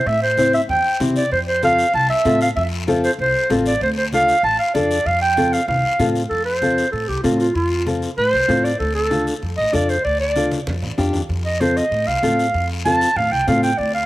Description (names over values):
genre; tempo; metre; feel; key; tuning
latin, cumbia; 192 BPM; 4/4; straight; F major; A4 = 439 Hz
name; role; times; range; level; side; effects
warm clarinet; melody; 0.0-14.1 s; F4 to A5; -18 LUFS; right 1 dB; cassette tape
upright bass; bass; 0.1-14.1 s; A1 to C3; -24 LUFS; equal; none
congas; percussion; 0.1-13.9 s; none; -31 LUFS; right 1 dB; none
guiro; percussion; 0.1-14.1 s; none; -33 LUFS; left 5 dB; none
nylon-string guitar; accompaniment; 0.4-13.7 s; C4 to C5; -22 LUFS; left 2 dB; cassette tape
room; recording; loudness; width
light reverb; home recording on cassette; -16 LUFS; side -17 dB against mid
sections
0.0-6.3 A section; 6.3-14.1 B section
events
clarinet solo 6.3-14.1; drum fill 10.5-11.3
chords
0.0 Am7; 1.3 F; 3.8 Dm; 5.1 F; 8.8 Dm; 11.3 F